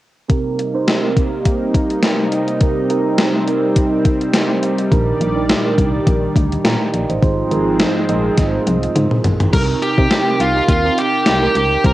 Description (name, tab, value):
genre	1980s-style pop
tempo	104 BPM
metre	4/4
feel	swing 55% on 16ths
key	C minor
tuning	A4 = 440 Hz
part	mellow tine electric piano	accompaniment	0.3-11.9 s	Ab2 to Bb5	-19 LUFS	right 4 dB	phaser, cassette tape
part	lush unison pad	sustained chords	0.3-9.5 s	C3 to D5	-21 LUFS	left 1 dB	chorus, cassette tape
part	gated 80s digital drum machine	drums	0.3-11.9 s	crash cymbal, hi-hat, kick drum, snare drum, toms	-17 LUFS	left 1 dB	gated reverb, gated reverb snare, overdrive, cassette tape
part	solid FM bass	bass	4.9-11.9 s	Ab1 to C3	-20 LUFS	left 1 dB	none
part	high-gain lead guitar	melody	9.5-11.9 s	F4 to Bb4	-16 LUFS	left 1 dB	distortion, cassette tape
room	wet spring reverb, RT60 2.6 s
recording	home recording on cassette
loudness	-14 LUFS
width	side -15 dB against mid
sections	0.3-9.5 A section; 9.5-11.9 B section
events	drum fill 8.4-9.5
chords	0.3 Cm7; 4.9 Ebmaj7/Bb; 7.2 Ab6; 9.5 Cm7